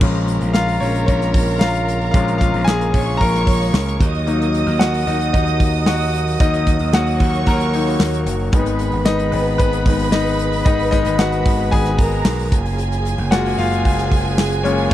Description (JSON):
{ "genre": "piano-driven pop", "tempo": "113 BPM", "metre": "4/4", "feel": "straight", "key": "unclear", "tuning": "A4 = 438 Hz", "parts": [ { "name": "dark studio violin section", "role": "second line", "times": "0.0-14.9 s", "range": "Ab4 to Eb6", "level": "-24 LUFS", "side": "right 4 dB", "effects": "tape echo" }, { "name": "bright concert grand piano", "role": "accompaniment", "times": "0.0-14.9 s", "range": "F3 to Bb5", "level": "-20 LUFS", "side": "left 4 dB", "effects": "none" }, { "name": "bright tonewheel organ", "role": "sustained chords", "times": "0.0-14.9 s", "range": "Db3 to Bb4", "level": "-29 LUFS", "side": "right 4 dB", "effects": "overdrive, chorus vibrato, fast rotary speaker" }, { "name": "growling picked electric bass", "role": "bass", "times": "0.0-14.9 s", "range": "Gb1 to Eb2", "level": "-20 LUFS", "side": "equal", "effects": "overdrive" }, { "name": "loose indie drum kit", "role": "drums", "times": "0.0-14.9 s", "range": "crash cymbal, handclaps, hi-hat, kick drum, snare drum", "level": "-19 LUFS", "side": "equal", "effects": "none" } ], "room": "little or no reverb", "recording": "dry, close 1970s-style studio recording", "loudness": "-15 LUFS", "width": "side -13 dB against mid", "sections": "0.0-14.9 A section", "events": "grand piano solo 0.0-14.9", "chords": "0.0 Bbm7; 4.0 Ebm; 8.5 Abm; 12.5 Gbmaj7", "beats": "| 0.01 0.54 1.08 1.61 | 2.14 2.67 3.21 3.74 | 4.27 4.80 5.34 5.87 | 6.40 6.93 7.46 8.00 | 8.53 9.06 9.59 10.12 | 10.66 11.19 11.72 12.25 | 12.79 13.32 13.85 14.38 | 14.91" }